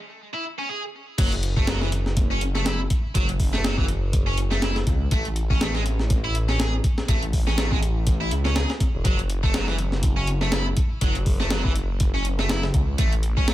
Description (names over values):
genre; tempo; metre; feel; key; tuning
breakbeat, breaks; 122 BPM; 4/4; swing 56% on 16ths; unclear; A4 = 439 Hz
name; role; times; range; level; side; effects
tight distorted guitar; riff; 0.3-13.5 s; E3 to G#4; -29 LUFS; right 1 dB; distortion, low-pass filter, digital delay
phased detuned saw bass; bass; 1.2-13.5 s; E1 to C#2; -24 LUFS; equal; phaser
breakbeat sampler-style drum kit; drums; 1.2-13.5 s; crash cymbal, hi-hat, kick drum, snare drum; -23 LUFS; equal; none
room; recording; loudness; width
little or no reverb; none; -20 LUFS; side -14 dB against mid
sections
0.0-1.2 A section; 1.2-13.5 B section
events
drop 1.2-13.5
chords
0.0 Amaj7 (rootless); 1.2 N.C.; 5.1 A; 9.1 N.C.; 13.0 A